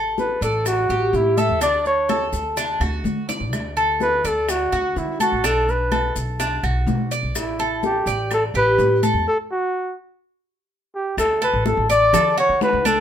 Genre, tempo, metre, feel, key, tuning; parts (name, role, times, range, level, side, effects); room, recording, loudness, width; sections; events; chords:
latin, Cuban son and guajira; 126 BPM; 4/4; straight; D major; A4 = 440 Hz
Cuban tres; arpeggios; 0.0-13.0 s; D4 to D5; -23 LUFS; equal
upright bass; bass; 0.0-13.0 s; A1 to D3; -26 LUFS; equal
trumpet with bucket mute; melody; 0.2-13.0 s; E4 to E5; -20 LUFS; equal
bongos; percussion; 0.2-13.0 s; -32 LUFS; left 6 dB
congas; percussion; 0.2-13.0 s; -28 LUFS; left 1 dB
maracas; percussion; 0.2-13.0 s; -34 LUFS; left 4 dB
claves; percussion; 0.7-12.4 s; -33 LUFS; right 4 dB
light reverb; minimal, uncompressed stereo recording; -18 LUFS; side -9 dB against mid
0.0-11.2 A section; 11.2-13.0 B section
drum fill 2.8-3.5; stop 9.3-11.2
0.0 A7sus4; 1.6 D; 5.4 Bm7; 7.4 A7sus4; 9.3 N.C.; 11.2 D